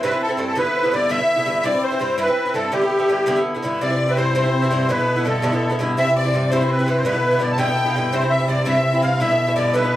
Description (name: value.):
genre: celtic folk, Celtic jig.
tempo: 111 BPM (dotted quarters).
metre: 6/8.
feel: straight.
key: G major.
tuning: A4 = 443 Hz.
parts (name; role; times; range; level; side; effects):
musette accordion; melody; 0.0-10.0 s; G4 to A5; -20 LUFS; equal; none.
rich fiddle; second line; 0.0-10.0 s; G4 to A5; -28 LUFS; left 4 dB; none.
Irish bouzouki; accompaniment; 0.0-10.0 s; G2 to E4; -22 LUFS; equal; none.
muted cello; bass; 3.8-10.0 s; B2 to C3; -22 LUFS; equal; none.
room: wet studio ambience, RT60 0.5 s.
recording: heard from further back in the room.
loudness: -17 LUFS.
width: side -14 dB against mid.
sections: 0.0-3.8 A section; 3.8-10.0 A section.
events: none.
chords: 0.0 C; 0.6 G6; 1.7 C; 2.7 G6; 3.8 C; 4.9 G6; 6.0 C; 7.0 G6; 8.1 C; 9.2 G6.